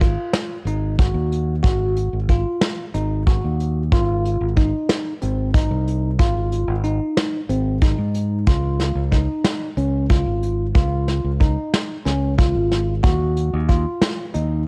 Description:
progressive instrumental, band music in an uneven meter; 184 BPM (eighths); 7/8; straight; A4 = 437 Hz
bell-like tine electric piano; arpeggios; 0.0-14.6 s; C4 to Gb4; -27 LUFS; equal; phaser, cassette tape
fingered electric bass; bass; 0.0-14.7 s; Ab1 to Ab2; -24 LUFS; equal
vintage brush drum kit; drums; 0.0-14.5 s; hi-hat, kick drum, snare drum; -21 LUFS; equal
small room ambience; home recording on cassette; -20 LUFS; mono
0.0-14.7 A section
0.0 Ab5; 3.9 Fm7/Ab; 8.5 Db; 13.0 Ebm

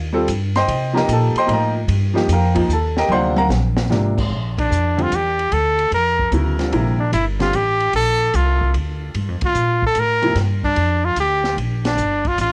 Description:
modal jazz; 149 BPM; 3/4; swing 67% on 8ths; G dorian from 4.3 s; A4 = 441 Hz
upright bass; bass; 0.0-12.5 s; G1 to C3; -22 LUFS; equal
clear grand piano; accompaniment; 0.1-7.5, 10.2-10.4 s; C3 to C6; -21 LUFS; equal; cassette tape
open jazz drum kit; drums; 0.3-12.5 s; crash cymbal, hi-hat, kick drum, ride cymbal, snare drum, toms; -30 LUFS; equal; vintage 12-bit sampler grit, cassette tape
bright trumpet; melody; 4.6-12.5 s; D4 to Bb4; -21 LUFS; equal; cassette tape, tape echo
light reverb; home recording on cassette, faint mains hum; -18 LUFS; mono
0.0-4.3 A section; 4.3-12.5 B section
drum fill 3.1-3.9; band accent 4.5, 9.4, 11.8
0.0 Cm7; 1.9 Ebadd9; 3.1 D7alt; 4.3 Gm9

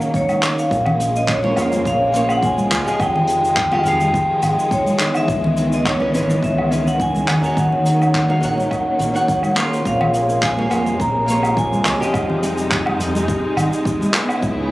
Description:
sunset chillout; 105 BPM; 4/4; swing 53% on 16ths; Bb minor; A4 = 440 Hz
vibraphone with medium mallets; melody; 0.0-12.1 s; Db5 to Bb5; -20 LUFS; equal; tape echo
nylon-string guitar; accompaniment; 0.0-12.4 s; Db3 to Gb5; -23 LUFS; equal; auto-pan, tape echo
dark studio string section; sustained chords; 0.0-14.7 s; C3 to Fb4; -22 LUFS; equal
soft brush drum kit; drums; 0.0-14.5 s; handclaps, hi-hat, shaker, woodblock; -23 LUFS; equal
electronic kick drum; drums; 0.1-14.5 s; -25 LUFS; equal; overdrive
congas; percussion; 0.3-14.1 s; -25 LUFS; left 1 dB
fingered electric bass with an envelope filter; bass; 0.7-14.7 s; F1 to F2; -23 LUFS; equal; tube saturation
moderate plate reverb, RT60 2.8 s; recorded on a phone in the room, club reverb, compression; -15 LUFS; side -17 dB against mid
0.0-14.7 A section
0.0 Ebm9; 0.7 Bbm9; 3.0 Fm9; 5.0 Dbm9; 7.3 Ebm9; 9.9 Bbm9; 12.1 Fm9; 14.1 Dbm9

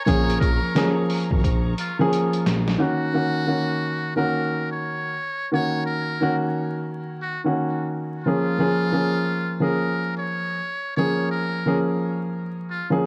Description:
hip hop, boom-bap hip-hop; 88 BPM; 4/4; swing 63% on 16ths; A4 = 440 Hz
trumpet with metal mute; melody; 0.0-12.9 s; F4 to Db5; -31 LUFS; equal; cassette tape, tape echo
warm studio string section; sustained chords; 0.0-2.8 s; Bb4 to Db6; -40 LUFS; equal; cassette tape
dark concert grand piano; accompaniment; 0.1-13.1 s; Eb3 to Ab4; -24 LUFS; equal; cassette tape
smooth synth bass; bass; 0.1-2.8 s; Ab1 to Bb1; -28 LUFS; equal
trip hop sampler-style drum kit; drums; 0.1-2.8 s; hi-hat, kick drum, snare drum; -26 LUFS; equal; cassette tape
small room ambience; home recording on cassette, vinyl crackle; -23 LUFS; mono
0.0-2.8 A section; 2.8-13.1 B section
drum fill 2.1-2.8
0.0 Bbm7; 2.8 Ebm7; 8.3 Bbm7

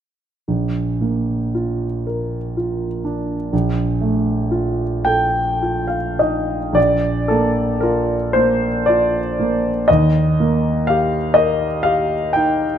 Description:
classical, romantic nocturne for solo piano; 32-42 BPM (dotted quarters); 6/8; rubato; Bb major; A4 = 440 Hz
warm grand piano; solo; 0.5-12.8 s; Bb1 to G5; -16 LUFS; equal
moderate recital hall reverb, RT60 1.8 s; close, detailed microphones; -16 LUFS; side -9 dB against mid
0.5-6.8 A section; 6.8-12.8 B section
0.5 Bb; 3.5 F7/Bb; 6.8 Bb; 9.9 Eb

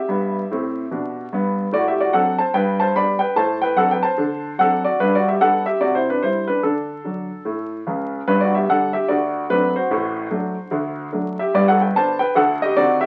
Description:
jazz, stride piano; 147 BPM; 4/4; swing 62% on 8ths; G major; A4 = 440 Hz
clear concert grand piano; solo; 0.0-13.1 s; G1 to B5; -20 LUFS; equal
wet small room reverb, RT60 0.5 s; very old 78 rpm record, vinyl crackle; -20 LUFS; mono
0.0-8.3 A section; 8.3-13.1 A section
0.1 G; 1.7 D7/A; 2.6 G; 3.4 D7/A; 4.2 D7; 5.0 G; 5.8 C; 6.6 D; 8.3 G5; 9.1 D7; 9.9 D7/A; 11.5 G; 12.4 D7b9

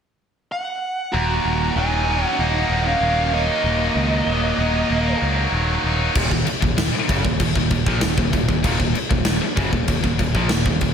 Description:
heavy metal; 96 BPM; 4/4; straight; Eb minor; A4 = 440 Hz
high-gain lead guitar; melody; 0.5-5.2 s; Eb5 to Bb5; -24 LUFS; right 2 dB; distortion, ping-pong delay
high-gain lead guitar; second line; 1.1-5.2 s; Bb3 to Gb4; -27 LUFS; right 2 dB; distortion, slapback echo
heavy high-gain guitar; riff; 1.1-10.9 s; Eb2 to Eb4; -24 LUFS; left 9 dB; distortion, slapback echo
tight distorted guitar; riff; 1.1-10.9 s; Eb2 to Eb4; -25 LUFS; right 8 dB; distortion
picked electric bass; bass; 1.1-10.9 s; Eb1 to Db2; -23 LUFS; equal
big rock drum kit; drums; 6.2-10.9 s; crash cymbal, kick drum, snare drum; -21 LUFS; equal
moderate concert hall reverb, RT60 2.3 s; big arena sound; -17 LUFS; side -7 dB against mid
0.0-1.1 A section; 1.1-6.1 B section; 6.1-10.9 C section
0.0 N.C.; 1.1 Ebm

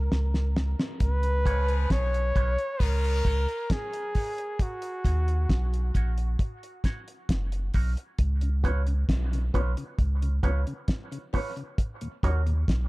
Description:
dub reggae; 67 BPM; 4/4; straight; A4 = 438 Hz
warm flugelhorn; melody; 0.0-6.0 s; Gb4 to Db5; -32 LUFS; equal; dub echo
soft dub sub bass; bass; 0.0-12.9 s; Gb1 to Eb2; -25 LUFS; equal
cloth-damped thuddy drum kit; drums; 0.1-12.9 s; hi-hat, kick drum, snare drum; -27 LUFS; equal
mellow tonewheel organ; accompaniment; 1.2-12.5 s; Eb2 to Eb4; -38 LUFS; left 2 dB; slow rotary speaker, high-pass filter
warm horn section; second line; 1.4-4.1 s; Db3 to Ab4; -41 LUFS; left 4 dB; high-pass filter, dub echo
electric guitar with an envelope filter; accompaniment; 1.5-12.4 s; F4 to Db5; -38 LUFS; right 5 dB; high-pass filter, dub echo
small room ambience; dark, warm production; -25 LUFS; side -21 dB against mid
0.0-1.0 A section; 1.0-12.9 B section
break 0.0-1.0; drum fill 0.0-1.0
0.0 Eb7(no3) (rootless); 1.0 Db7; 4.6 Ebm7; 8.2 Db7; 11.8 Ebm7

